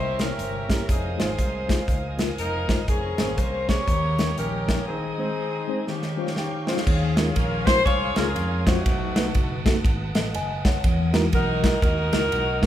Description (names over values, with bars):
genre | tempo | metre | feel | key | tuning
uptempo gospel | 120 BPM | 4/4 | swing 61% on 8ths | unclear | A4 = 443 Hz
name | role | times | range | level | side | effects
clear saxophone section | melody | 0.0-12.7 s | A3 to Db5 | -26 LUFS | left 1 dB | none
mellow tine electric piano | accompaniment | 0.0-12.7 s | B2 to Ab5 | -28 LUFS | left 2 dB | medium stereo tremolo
bright tonewheel organ | sustained chords | 0.0-12.7 s | Eb4 to Eb6 | -36 LUFS | right 3 dB | slow rotary speaker
glass harmonica | sustained chords | 0.0-6.9 s | Eb4 to Bb5 | -39 LUFS | equal | none
fingered electric bass | bass | 0.0-12.7 s | F1 to F2 | -29 LUFS | equal | none
modern studio drum kit | drums | 0.2-12.7 s | crash cymbal, hi-hat, kick drum, ride cymbal, snare drum | -24 LUFS | equal | none
room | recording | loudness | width
moderate recital hall reverb, RT60 1.4 s | recorded in a church or concert hall | -21 LUFS | side -12 dB against mid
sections
0.0-6.9 A section; 6.9-12.7 B section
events
break 4.9-6.9; drum fill 5.9-6.9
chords
0.0 C7b9; 0.9 Fm7; 2.9 Bbm9/F; 3.9 Eb7; 4.9 Ab/Eb; 5.9 Eb13; 6.9 Eb9sus4; 8.9 B7; 10.8 Emaj9#11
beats
0.39 | 0.89 1.38 1.88 2.38 | 2.88 3.38 3.88 4.38 | 4.88 5.38 5.88 6.37 | 6.87 7.37 7.87 8.36 | 8.86 9.35 9.85 10.35 | 10.84 11.34 11.83 12.32